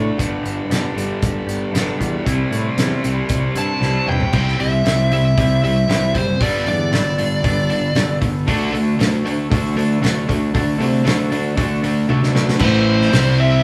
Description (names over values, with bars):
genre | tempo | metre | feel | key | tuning
quiet-loud alternative rock | 116 BPM | 4/4 | straight | unclear | A4 = 440 Hz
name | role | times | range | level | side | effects
twangy electric guitar | arpeggios | 0.0-12.6 s | G2 to A4 | -30 LUFS | equal | spring reverb
fuzz guitar | riff | 0.0-4.3, 8.5-12.6 s | G2 to D4 | -26 LUFS | equal | distortion
fuzz fingered electric bass | bass | 0.0-13.6 s | F#1 to C3 | -23 LUFS | equal | overdrive
loose indie drum kit | drums | 0.2-13.2 s | crash cymbal, hi-hat, kick drum, snare drum, toms | -24 LUFS | equal | none
fuzz lead guitar | melody | 3.6-8.2, 12.6-13.6 s | C5 to A5 | -23 LUFS | equal | distortion
tight distorted guitar | riff | 4.3-13.6 s | G2 to D4 | -24 LUFS | equal | distortion
thick fuzz guitar | riff | 12.6-13.6 s | A2 to C4 | -21 LUFS | equal | distortion
room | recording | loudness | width
moderate studio reverb, RT60 0.7 s | band playing live in one room, small room ambience | -18 LUFS | mono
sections
0.0-4.3 A section; 4.3-12.6 B section; 12.6-13.6 C section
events
drum fill 3.8-4.3, 12.1-12.6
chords
0.2 G; 2.3 Cadd9; 4.3 C; 6.4 Gadd9; 8.5 D; 12.6 Am; 13.1 C5